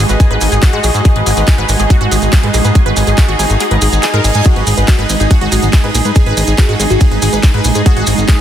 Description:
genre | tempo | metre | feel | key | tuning
psychedelic trance | 141 BPM | 4/4 | straight | G# minor | A4 = 440 Hz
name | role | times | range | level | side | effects
pulsing gated texture | sustained chords | 0.0-8.4 s | G#3 to F#4 | -20 LUFS | right 4 dB | chorus, built-in reverb, sidechain pumping
wide unison pluck | riff | 0.0-8.3 s | F#4 to G#5 | -20 LUFS | moving between left 4 dB and right 4 dB | auto-pan, vintage 12-bit sampler grit, sidechain pumping, ping-pong delay
fat analog bass | bass | 0.0-8.2 s | G#1 to G#2 | -14 LUFS | equal | none
warm chamber string section | texture | 0.0-8.4 s | D#4 to D#5 | -19 LUFS | equal | sidechain pumping
techno drum kit | drums | 0.1-8.4 s | handclaps, hi-hat, ride cymbal | -20 LUFS | right 1 dB | small room ambience
maracas | percussion | 0.1-8.4 s | none | -21 LUFS | right 2 dB | none
electronic kick drum | drums | 0.2-8.4 s | none | -9 LUFS | equal | small room ambience
reverse cymbal | sound effects | 3.8-4.5 s | none | -24 LUFS | right 5 dB | none
wide unison lead | melody | 4.5-8.4 s | D#4 to G#4 | -21 LUFS | left 1 dB | phaser, sidechain pumping, ping-pong delay
room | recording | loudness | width
light reverb, digital ambience | dense, heavily limited modern master | -9 LUFS | side -10 dB against mid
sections
0.0-8.4 A section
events
kick drops out 3.6-4.5; reverse cymbal 3.8-4.5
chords
0.0 G#5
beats
0.20 0.63 | 1.05 1.48 1.90 2.33 | 2.75 3.18 3.60 4.03 | 4.46 4.88 5.31 5.73 | 6.16 6.58 7.01 7.43 | 7.86 8.29

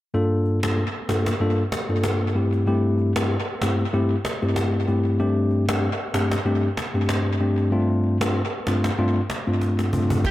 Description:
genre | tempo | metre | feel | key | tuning
afrobeats | 95 BPM | 4/4 | swing 55% on 16ths | G dorian | A4 = 441 Hz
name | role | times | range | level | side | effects
mellow tine electric piano | accompaniment | 0.1-10.3 s | G2 to A4 | -21 LUFS | left 1 dB | none
cajon | drums | 0.1-10.3 s | none | -27 LUFS | equal | tape echo
punchy sub bass | bass | 10.2-10.3 s | G1 | -21 LUFS | equal | none
downlifter | sound effects | 10.2-10.3 s | none | -33 LUFS | right 3 dB | none
growling alto saxophone | melody | 10.3 s | G4 | -23 LUFS | right 4 dB | none
room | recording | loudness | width
light reverb | echo-heavy mix | -20 LUFS | side -15 dB against mid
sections
0.1-10.2 A section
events
drum fill 9.6-10.2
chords
0.1 Gm7; 2.4 Am7/G; 5.2 Gsus24; 7.7 G9sus4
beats
| 0.14 0.78 1.41 2.04 | 2.67 3.30 3.93 4.56 | 5.20 5.83 6.46 7.09 | 7.72 8.35 8.98 9.62 | 10.25

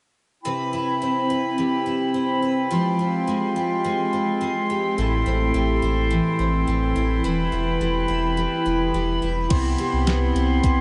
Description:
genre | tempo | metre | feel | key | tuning
dream pop | 106 BPM | 4/4 | straight | C major | A4 = 442 Hz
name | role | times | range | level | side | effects
warm woodwind section | sustained chords | 0.4-10.8 s | Ab3 to C6 | -26 LUFS | equal | none
picked twelve-string acoustic guitar | arpeggios | 0.5-10.8 s | A2 to B4 | -26 LUFS | equal | lush chorus, delay
saturated sub bass | bass | 5.0-10.8 s | E1 to C2 | -26 LUFS | equal | none
crisp 8-bit digital drum machine | drums | 9.5-10.8 s | crash cymbal, hi-hat, kick drum, snare drum | -27 LUFS | equal | overdrive
room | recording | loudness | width
wet huge ambient reverb, RT60 7.8 s | dreamy mix soaked in reverb, nothing above 11.0 kHz | -22 LUFS | mono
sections
0.4-9.5 A section; 9.5-10.8 B section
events
none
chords
0.4 Cmaj7; 2.7 Fmadd9; 5.0 Am7; 7.2 Em; 9.5 Cmaj7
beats
| 0.45 1.01 1.58 2.15 | 2.71 3.28 3.85 4.41 | 4.98 5.54 6.11 6.67 | 7.24 7.81 8.37 8.94 | 9.51 10.07 10.64

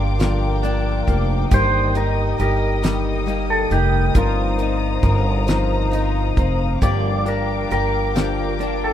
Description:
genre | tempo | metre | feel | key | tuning
six-eight pop ballad | 45 BPM (dotted quarters) | 6/8 | straight | G minor | A4 = 440 Hz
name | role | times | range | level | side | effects
clean lap steel guitar | melody | 0.0-8.9 s | F4 to D5 | -24 LUFS | right 2 dB | analog delay
direct-recorded clean electric guitar | accompaniment | 0.0-8.9 s | G2 to Bb4 | -25 LUFS | left 1 dB | double-tracked left and right
warm studio string section | sustained chords | 0.0-8.9 s | Bb4 to Eb6 | -27 LUFS | left 4 dB | none
picked steel-string acoustic guitar | arpeggios | 0.0-8.9 s | G2 to Bb4 | -28 LUFS | left 4 dB | analog delay
upright bass | bass | 0.0-8.9 s | F1 to G1 | -21 LUFS | equal | none
damped 70s drum kit | drums | 0.2-8.8 s | hi-hat, kick drum, snare drum | -20 LUFS | equal | none
room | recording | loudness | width
small room ambience | rough home demo mix | -17 LUFS | side -10 dB against mid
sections
0.0-8.9 A section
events
none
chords
0.0 Gm7; 1.5 Eb/G; 4.1 F7sus4/G; 6.8 Gm7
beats
0.19 | 1.51 2.83 | 4.15 5.48 | 6.82 8.15

